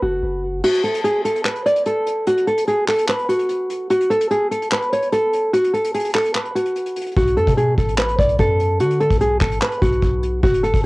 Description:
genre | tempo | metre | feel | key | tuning
hip hop, trap | 147 BPM | 4/4 | half-time | unclear | A4 = 440 Hz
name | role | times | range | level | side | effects
nylon-string guitar | melody | 0.0-10.8 s | F#4 to D5 | -18 LUFS | equal | low-pass filter, cassette tape
long sustained 808-style bass | bass | 0.0-0.6, 7.2-10.9 s | F#1 to D3 | -22 LUFS | equal | none
vintage brush drum kit | drums | 0.6-10.8 s | crash cymbal, handclaps, hi-hat, kick drum | -22 LUFS | equal | cassette tape
room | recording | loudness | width
light reverb | home recording on cassette | -16 LUFS | side -23 dB against mid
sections
0.6-10.9 A section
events
kick muted 0.6-7.2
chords
0.0 N.C.; 7.2 B5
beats
0.23 | 0.64 1.04 1.45 1.86 | 2.27 2.68 3.08 3.49 | 3.90 4.31 4.72 5.13 | 5.53 5.94 6.35 6.76 | 7.17 7.58 7.98 8.39 | 8.80 9.21 9.62 10.02 | 10.43 10.84

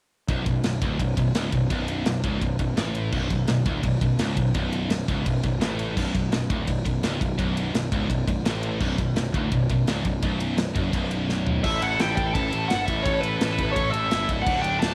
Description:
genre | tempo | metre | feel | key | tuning
heavy metal | 169 BPM | 4/4 | straight | unclear | A4 = 439 Hz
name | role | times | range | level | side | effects
scooped high-gain guitar | riff | 0.3-14.9 s | B1 to A4 | -28 LUFS | equal | distortion, cassette tape
fuzz picked electric bass | bass | 0.3-14.9 s | B0 to A1 | -31 LUFS | equal | overdrive
modern studio drum kit | drums | 0.3-14.9 s | crash cymbal, kick drum, ride cymbal, snare drum, toms | -30 LUFS | equal | cassette tape
high-gain lead guitar | melody | 11.6-14.9 s | B4 to A5 | -28 LUFS | equal | distortion, cassette tape
room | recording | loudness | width
small room ambience | home recording on cassette | -25 LUFS | mono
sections
0.3-11.6 A section; 11.6-14.9 B section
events
drum fill 11.3-11.6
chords
0.3 N.C.; 11.6 A5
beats
| 0.29 0.64 1.00 1.35 | 1.71 2.06 2.42 2.77 | 3.13 3.48 3.84 4.19 | 4.55 4.90 5.26 5.61 | 5.97 6.32 6.67 7.03 | 7.38 7.74 8.09 8.45 | 8.80 9.16 9.51 9.87 | 10.22 10.58 10.93 11.28 | 11.64 11.99 12.35 12.70 | 13.05 13.41 13.76 14.11 | 14.47 14.82

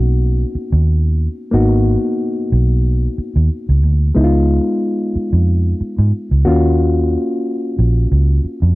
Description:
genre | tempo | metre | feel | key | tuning
lush 1970s-style soul | 91 BPM | 4/4 | swing 54% on 16ths | G# dorian | A4 = 440 Hz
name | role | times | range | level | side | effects
reed electric piano | accompaniment | 0.0-8.8 s | G#3 to F#4 | -18 LUFS | left 2 dB | none
vintage muted fingered electric bass | bass | 0.0-8.8 s | G#1 to G#2 | -13 LUFS | equal | none
room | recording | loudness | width
light reverb | none | -13 LUFS | side -20 dB against mid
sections
0.0-8.8 A section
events
reed electric piano fill 8.4-8.8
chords
0.0 G#m7 (rootless); 4.2 C#9; 6.5 D#m9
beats
0.22 0.88 | 1.53 2.19 2.85 3.51 | 4.16 4.82 5.48 6.14 | 6.80 7.45 8.11

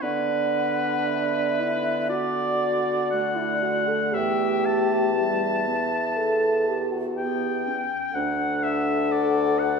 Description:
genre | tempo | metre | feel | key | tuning
classical, slow romantic movement for wind quintet | 57-62 BPM | 4/4 | rubato | B minor | A4 = 440 Hz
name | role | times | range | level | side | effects
mellow hollow concert flute | melody | 0.0-9.8 s | D5 to G5 | -30 LUFS | left 6 dB | none
bright oboe | second line | 0.0-9.8 s | B4 to A5 | -28 LUFS | left 2 dB | none
mellow clarinet | accompaniment | 0.0-9.8 s | G3 to D4 | -32 LUFS | right 4 dB | none
warm French horn | accompaniment | 0.0-9.8 s | D4 to A4 | -26 LUFS | equal | none
mellow bassoon | bass | 0.0-9.8 s | D2 to D3 | -30 LUFS | right 3 dB | none
room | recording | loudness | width
wet recital hall reverb, RT60 1.5 s | heard from further back in the room | -22 LUFS | side -5 dB against mid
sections
0.0-9.8 A section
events
none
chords
0.0 Bm/D; 4.1 Em; 8.1 Bm/D (rootless)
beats
| 0.03 1.08 2.08 3.10 | 4.13 5.16 6.17 7.16 | 8.14 9.12

